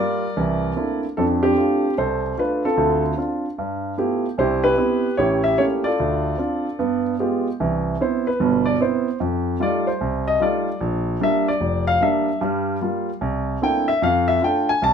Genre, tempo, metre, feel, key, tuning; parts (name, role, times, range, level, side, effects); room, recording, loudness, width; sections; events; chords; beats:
solo jazz; 149 BPM; 4/4; swing 65% on 8ths; C major; A4 = 440 Hz
warm grand piano; solo; 0.0-14.9 s; F1 to A5; -18 LUFS; right 1 dB
moderate studio reverb, RT60 0.7 s; minimal, uncompressed stereo recording; -19 LUFS; side -7 dB against mid
0.0-7.6 A section; 7.6-14.9 B section
grand piano solo 7.6-14.9
0.4 C13; 1.2 F6; 2.8 Dm7; 3.6 G13; 4.4 Cmaj7; 5.2 A7b9; 6.0 Dm7; 6.8 G7b9; 7.6 Cmaj7; 9.2 F9; 10.8 Bb6; 12.4 Gm7; 13.2 C13; 14.0 F6
0.36 0.76 | 1.17 1.57 1.97 2.37 | 2.77 3.17 3.57 3.98 | 4.38 4.78 5.18 5.58 | 5.98 6.38 6.79 7.19 | 7.59 7.99 8.39 8.79 | 9.20 9.60 10.00 10.40 | 10.80 11.20 11.60 12.00 | 12.40 12.80 13.21 13.61 | 14.01 14.41 14.81